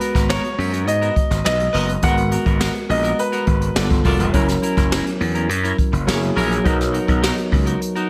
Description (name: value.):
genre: polished 1980s jazz-funk pop.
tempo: 104 BPM.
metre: 4/4.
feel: straight.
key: G# minor.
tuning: A4 = 440 Hz.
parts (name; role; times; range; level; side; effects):
bright grand piano; melody; 0.0-3.7 s; B4 to F#5; -25 LUFS; equal; none.
overdriven tine electric piano; accompaniment; 0.0-8.1 s; F#3 to A#5; -26 LUFS; equal; subtle chorus.
clean electric guitar; riff; 0.0-8.1 s; B3 to A#4; -29 LUFS; equal; subtle chorus.
jazz brush drum kit; drums; 0.0-8.1 s; hi-hat, kick drum, snare drum; -24 LUFS; equal; gated reverb.
gritty slap bass; bass; 0.1-7.7 s; E1 to G#2; -23 LUFS; equal; overdrive.
clear horn section; second line; 1.4-6.5 s; D#4 to D#5; -30 LUFS; equal; none.
room: light reverb, small room reverb.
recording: none.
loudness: -19 LUFS.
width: mono.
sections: 0.0-8.1 A section.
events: none.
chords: 0.0 G#m9; 3.8 G9; 4.3 F#7; 6.1 F#9; 6.7 Bmaj7.